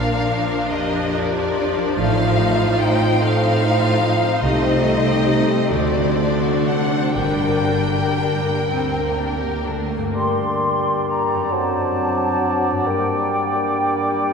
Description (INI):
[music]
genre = classical, slow romantic movement for symphony orchestra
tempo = 39-50 BPM (dotted quarters)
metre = 6/8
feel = rubato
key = G minor from 4.4 s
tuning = A4 = 440 Hz
[part]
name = rich studio violin section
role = melody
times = 0.0-9.6 s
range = D5 to G5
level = -24 LUFS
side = left 2 dB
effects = none
[part]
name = rich studio violin section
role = second line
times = 0.0-10.1 s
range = G3 to C5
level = -26 LUFS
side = left 2 dB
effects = none
[part]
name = rich chamber viola section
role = accompaniment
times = 0.0-10.2 s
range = F3 to Eb4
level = -24 LUFS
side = right 2 dB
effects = none
[part]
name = concert harp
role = arpeggios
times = 0.0-14.3 s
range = F#2 to G5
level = -25 LUFS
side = left 3 dB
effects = none
[part]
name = rich chamber double bass section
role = bass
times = 0.0-8.1 s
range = G1 to D2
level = -29 LUFS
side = right 3 dB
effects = none
[part]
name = warm chamber cello section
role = bass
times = 0.0-9.9 s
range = D2 to D3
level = -25 LUFS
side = right 2 dB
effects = none
[part]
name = mellow French horn section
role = sustained chords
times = 0.7-14.3 s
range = Bb3 to C5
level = -25 LUFS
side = left 1 dB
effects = none
[part]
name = flute section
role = second line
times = 10.1-14.3 s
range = G5 to C6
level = -23 LUFS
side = left 1 dB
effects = none
[part]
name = warm oboe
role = second line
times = 10.1-14.3 s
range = D5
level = -25 LUFS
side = right 1 dB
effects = none
[part]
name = dark clarinet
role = second line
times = 10.2-14.3 s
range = Bb4 to C5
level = -29 LUFS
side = right 1 dB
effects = none
[part]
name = mellow bassoon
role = accompaniment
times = 10.2-14.3 s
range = F#3 to G3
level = -24 LUFS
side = equal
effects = none
[sound]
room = wet cathedral reverb, RT60 4.6 s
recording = minimal, uncompressed stereo recording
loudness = -17 LUFS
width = side -5 dB against mid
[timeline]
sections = 0.0-10.2 A section; 10.2-14.3 B section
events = none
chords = 0.0 Bb; 2.0 F7/A; 4.4 Am7b5/C; 5.7 D7; 7.2 Gm; 11.5 D7/F#; 12.9 Gm